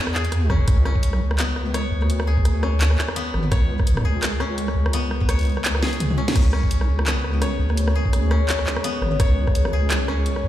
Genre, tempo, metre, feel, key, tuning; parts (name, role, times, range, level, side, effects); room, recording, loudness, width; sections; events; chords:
half-time drum and bass; 169 BPM; 4/4; swing 57% on 16ths, half-time; A4 = 442 Hz
koto; arpeggios; 0.0-10.5 s; B3 to C#5; -28 LUFS; left 3 dB; digital delay
deep soft wobble bass; bass; 0.0-10.5 s; G#1 to E2; -21 LUFS; equal; chorus
drum and bass drum kit; drums; 0.1-10.4 s; crash cymbal, handclaps, hi-hat, rim click, snare drum, toms; -26 LUFS; equal; studio reverb
electronic kick drum; drums; 0.5-9.5 s; -20 LUFS; equal; studio reverb
dark analog pad; sustained chords; 6.4-10.5 s; G#3 to C#5; -28 LUFS; left 1 dB; chorus, phaser, sidechain pumping
little or no reverb; played on a big sound system in a bare room, large studio reverb; -18 LUFS; side -13 dB against mid
0.0-10.5 A section
drum fill 5.8-6.4; kick drops out 6.0-6.4
0.0 C#5